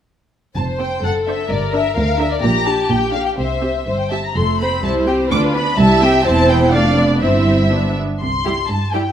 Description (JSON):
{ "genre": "quick classical-period movement for string orchestra", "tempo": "118-131 BPM", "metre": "2/4", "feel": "rubato", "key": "C major from 4.4 s", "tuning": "A4 = 439 Hz", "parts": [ { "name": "dark studio violin section", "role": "melody", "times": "0.6-9.1 s", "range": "C5 to D6", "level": "-21 LUFS", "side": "left 3 dB", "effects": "none" }, { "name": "warm studio violin section", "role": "second line", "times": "0.6-9.0 s", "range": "G4 to E5", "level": "-21 LUFS", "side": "left 1 dB", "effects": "none" }, { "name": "dark studio cello section", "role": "bass", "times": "0.6-9.1 s", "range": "C2 to C3", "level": "-21 LUFS", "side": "right 1 dB", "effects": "none" }, { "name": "dark studio double bass section", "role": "bass", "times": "0.6-8.6 s", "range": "E1 to D2", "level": "-22 LUFS", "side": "right 2 dB", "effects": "none" }, { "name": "rich studio viola section", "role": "accompaniment", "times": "0.8-9.0 s", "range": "G3 to C5", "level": "-19 LUFS", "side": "right 1 dB", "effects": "none" } ], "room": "moderate recital hall reverb, RT60 1.4 s", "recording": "none", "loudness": "-14 LUFS", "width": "side -9 dB against mid", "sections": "0.6-8.2 A section", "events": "none", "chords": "0.6 F5; 1.0 D7/F#; 1.5 Gm; 2.4 Gm/Bb; 3.4 C; 4.4 F; 4.8 C; 5.3 Bdim/D; 5.8 C; 6.3 C/E; 6.7 Dm/F; 7.2 C/G; 7.7 G; 8.2 C", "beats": "| 0.57 1.04 | 1.51 1.97 | 2.43 2.90 | 3.38 3.87 | 4.36 4.84 | 5.31 5.78 | 6.25 6.73 | 7.22 7.72 | 8.22 8.70" }